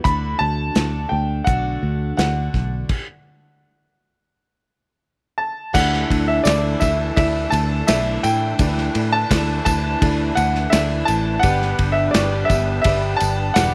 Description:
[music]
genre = folk rock and heartland rock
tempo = 84 BPM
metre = 4/4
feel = straight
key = D major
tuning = A4 = 440 Hz
[part]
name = clear grand piano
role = melody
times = 0.0-13.7 s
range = D5 to B5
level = -24 LUFS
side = equal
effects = none
[part]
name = picked twelve-string acoustic guitar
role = accompaniment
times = 0.0-13.7 s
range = G2 to G4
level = -28 LUFS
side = equal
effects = none
[part]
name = fingered electric bass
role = bass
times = 0.0-13.7 s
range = E1 to A2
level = -24 LUFS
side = equal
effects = none
[part]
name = natural country drum kit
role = drums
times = 0.1-13.7 s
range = crash cymbal, hi-hat, kick drum, ride cymbal, snare drum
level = -25 LUFS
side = equal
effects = none
[part]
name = warm upright piano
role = accompaniment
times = 5.7-13.7 s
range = E4 to C#6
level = -34 LUFS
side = equal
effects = none
[part]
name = musette accordion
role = sustained chords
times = 5.7-13.7 s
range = E3 to B4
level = -33 LUFS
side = equal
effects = none
[part]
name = tambourine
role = percussion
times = 5.7-13.7 s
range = none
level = -36 LUFS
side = equal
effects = none
[sound]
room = studio reverb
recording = none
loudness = -19 LUFS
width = mono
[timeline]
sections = 0.0-5.8 A section; 5.8-13.7 B section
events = stop 2.9-5.8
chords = 0.1 D; 2.9 N.C.; 5.8 Dsus2; 11.4 G

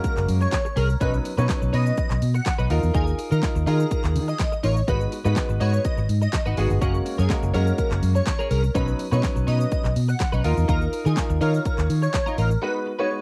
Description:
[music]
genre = dance-pop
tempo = 124 BPM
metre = 4/4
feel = straight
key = unclear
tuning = A4 = 439 Hz
[part]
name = airy dreamy lead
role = melody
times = 0.0-13.1 s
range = F#4 to F#5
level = -32 LUFS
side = equal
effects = chorus, cassette tape, plate reverb, analog delay
[part]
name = clear concert grand piano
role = accompaniment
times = 0.0-13.2 s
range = F#3 to C#5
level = -32 LUFS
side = equal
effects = sidechain pumping, cassette tape, plate reverb
[part]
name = twelve-string electric guitar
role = riff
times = 0.0-13.1 s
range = C#4 to B4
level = -34 LUFS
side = equal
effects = analog chorus, cassette tape
[part]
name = pop drum kit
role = drums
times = 0.0-12.6 s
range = handclaps, hi-hat, kick drum, shaker, snare drum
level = -29 LUFS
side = equal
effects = cassette tape
[part]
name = vintage muted fingered electric bass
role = bass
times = 0.2-12.6 s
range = F#1 to D#3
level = -24 LUFS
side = equal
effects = sidechain pumping
[sound]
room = little or no reverb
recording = home recording on cassette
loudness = -22 LUFS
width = mono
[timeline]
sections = 0.0-13.2 A section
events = break 12.6-13.2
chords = 0.0 F#add9; 1.0 Badd9; 2.7 D#sus2; 4.9 G#m7; 6.8 F#add9; 8.8 Badd9; 10.4 D#sus2; 12.6 G#m7

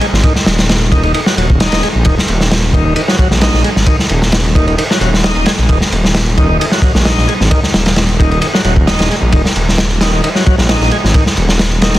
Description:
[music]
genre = breakbeat, breaks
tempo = 132 BPM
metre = 4/4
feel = straight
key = Eb minor pentatonic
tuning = A4 = 439 Hz
[part]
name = bright tonewheel organ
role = riff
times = 0.0-12.0 s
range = Eb3 to Eb4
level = -18 LUFS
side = equal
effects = overdrive, slow rotary speaker, tape echo
[part]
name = crunchy breakbeat drum kit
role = drums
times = 0.0-12.0 s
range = kick drum, ride cymbal, snare drum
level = -12 LUFS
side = equal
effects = none
[part]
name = detuned saw bass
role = bass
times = 0.1-12.0 s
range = Eb1 to Bb1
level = -14 LUFS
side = equal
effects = none
[sound]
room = light reverb, small room ambience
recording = dense, heavily limited modern master, vinyl crackle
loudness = -9 LUFS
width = side -15 dB against mid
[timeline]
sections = 0.0-12.0 A section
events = none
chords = 0.0 Ebm

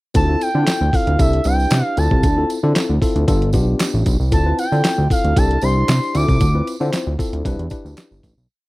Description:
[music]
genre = early-eighties boogie funk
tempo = 115 BPM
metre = 4/4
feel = straight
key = D dorian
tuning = A4 = 440 Hz
[part]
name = tine electric piano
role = accompaniment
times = 0.1-8.3 s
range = B3 to C5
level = -22 LUFS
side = left 3 dB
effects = none
[part]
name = fat analog bass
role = bass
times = 0.1-8.5 s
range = G1 to D3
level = -17 LUFS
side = equal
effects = none
[part]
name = detuned 8-bit digital drum machine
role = drums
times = 0.1-8.4 s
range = handclaps, hi-hat, kick drum, snare drum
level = -19 LUFS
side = equal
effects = none
[part]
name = tambourine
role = percussion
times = 0.1-8.5 s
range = none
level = -34 LUFS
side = right 6 dB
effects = none
[part]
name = expressive portamento lead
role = melody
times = 0.2-6.7 s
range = E5 to D6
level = -22 LUFS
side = right 1 dB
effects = chorus
[sound]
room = little or no reverb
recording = dry, close 1970s-style studio recording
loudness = -15 LUFS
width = side -20 dB against mid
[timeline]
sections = 0.1-8.5 verse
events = fade-out 6.4-8.5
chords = 0.1 Dm9; 1.2 C6; 2.0 Dm9; 3.3 G7; 4.3 Dm9; 5.4 C6; 6.1 Dm9; 7.5 Cmaj9

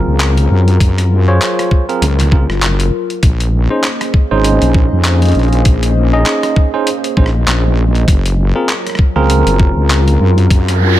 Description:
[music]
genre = glitch hop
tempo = 99 BPM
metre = 4/4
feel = swing 57% on 16ths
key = unclear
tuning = A4 = 439 Hz
[part]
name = dark analog pad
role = sustained chords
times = 0.0-11.0 s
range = Gb3 to Eb5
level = -20 LUFS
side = left 1 dB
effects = chorus, phaser, sidechain pumping
[part]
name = bell-like tine electric piano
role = stabs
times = 0.0-10.9 s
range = C4 to Eb5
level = -18 LUFS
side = moving between left 6 dB and right 7 dB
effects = auto-pan, sidechain pumping, low-pass filter, dub echo
[part]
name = wobble bass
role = bass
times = 0.0-11.0 s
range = Gb1 to Gb2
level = -12 LUFS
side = equal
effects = chorus, tube saturation
[part]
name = boom bap sampler-style drum kit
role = drums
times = 0.2-10.8 s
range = handclaps, hi-hat, rim click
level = -19 LUFS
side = left 1 dB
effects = small room ambience
[part]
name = electronic kick drum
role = drums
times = 0.8-10.6 s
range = none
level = -10 LUFS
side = equal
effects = small room ambience
[part]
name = noise sweep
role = sound effects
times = 10.6-11.0 s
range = none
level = -17 LUFS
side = right 7 dB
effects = none
[sound]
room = digital ambience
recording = none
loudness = -10 LUFS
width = side -13 dB against mid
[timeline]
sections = 0.0-11.0 A section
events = filter sweep on tine electric piano 0.0-11.0; noise sweep 10.6-11.0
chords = 0.0 Gbmaj9#11; 3.2 Bbm11; 8.1 Gbmaj9#11

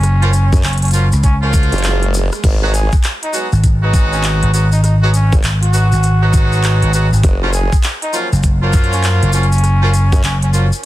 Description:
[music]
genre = glitch hop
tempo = 100 BPM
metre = 4/4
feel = swing 63% on 16ths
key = unclear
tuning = A4 = 441 Hz
[part]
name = growling trumpet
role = melody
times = 0.0-10.5 s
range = C#4 to G#4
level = -24 LUFS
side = equal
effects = digital delay
[part]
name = vintage slap bass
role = bass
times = 0.0-10.7 s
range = F#1 to F#2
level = -12 LUFS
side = equal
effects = none
[part]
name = pop drum kit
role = drums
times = 0.0-10.5 s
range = crash cymbal, handclaps, hi-hat, rim click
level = -23 LUFS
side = equal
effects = none
[part]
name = tube shaker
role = percussion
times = 0.0-10.8 s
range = none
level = -27 LUFS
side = left 4 dB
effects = none
[part]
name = brilliant horn section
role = stabs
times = 0.2-10.7 s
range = E#3 to F#4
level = -21 LUFS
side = right 1 dB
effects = sidechain pumping, digital delay
[part]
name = formant-sweep wobble bass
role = bass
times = 0.5-10.2 s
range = F#1 to F#2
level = -16 LUFS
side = equal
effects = chorus
[part]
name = electronic kick drum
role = drums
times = 0.5-10.2 s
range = none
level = -13 LUFS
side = equal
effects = none
[part]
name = swell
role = sound effects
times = 1.4-2.4 s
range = none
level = -28 LUFS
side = right 2 dB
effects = none
[sound]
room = little or no reverb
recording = dense, heavily limited modern master, vinyl crackle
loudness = -11 LUFS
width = side -15 dB against mid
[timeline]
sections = 0.0-10.9 A section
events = swell 1.4-2.4; break 1.8-2.4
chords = 0.0 F#maj7; 2.4 G#m7; 7.2 F#maj7

